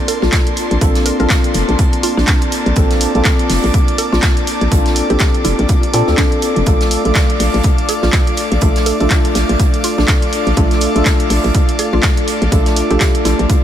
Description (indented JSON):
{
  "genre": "deep house",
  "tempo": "123 BPM",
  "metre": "4/4",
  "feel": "swing 58% on 16ths",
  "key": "Bb major",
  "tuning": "A4 = 440 Hz",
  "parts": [
    { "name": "airy breathy pad", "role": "sustained chords", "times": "0.0-13.6 s", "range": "Bb3 to D6", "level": "-22 LUFS", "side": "equal", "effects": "chorus, sidechain pumping" },
    { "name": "tine electric piano", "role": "stabs", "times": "0.0-13.6 s", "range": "A3 to A4", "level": "-19 LUFS", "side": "equal", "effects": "lush chorus, sidechain pumping, analog delay" },
    { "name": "mallet-like synth pluck", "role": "melody", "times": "0.1-13.6 s", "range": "D4 to Bb4", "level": "-24 LUFS", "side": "right 1 dB", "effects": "chorus, phaser, tape echo" },
    { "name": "punchy analog drum machine", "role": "drums", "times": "0.1-13.6 s", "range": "handclaps, hi-hat", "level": "-21 LUFS", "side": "equal", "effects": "none" },
    { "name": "unplugged drum kit", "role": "drums", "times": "0.1-13.6 s", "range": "hi-hat, snare drum", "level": "-28 LUFS", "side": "right 3 dB", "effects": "sidechain pumping on hats, high-pass filter on hats, high-pass filter on snare, high-pass filter on room" },
    { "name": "hollow knocking FM bass", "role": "bass", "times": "0.2-13.5 s", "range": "F1 to Bb2", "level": "-16 LUFS", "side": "equal", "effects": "sidechain pumping" },
    { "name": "electronic kick drum", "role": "drums", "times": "0.3-13.6 s", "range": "none", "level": "-14 LUFS", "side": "equal", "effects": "none" }
  ],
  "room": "light reverb",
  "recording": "none",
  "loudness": "-11 LUFS",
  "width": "side -10 dB against mid",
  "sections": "0.0-13.6 A section",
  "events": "none",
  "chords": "0.0 Bbmaj9; 6.7 Dm/Bb",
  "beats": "0.33 | 0.81 1.30 1.79 2.28 | 2.77 3.25 3.74 4.23 | 4.72 5.21 5.69 6.18 | 6.67 7.16 7.64 8.13 | 8.62 9.11 9.60 10.08 | 10.57 11.06 11.55 12.03 | 12.52 13.01 13.50"
}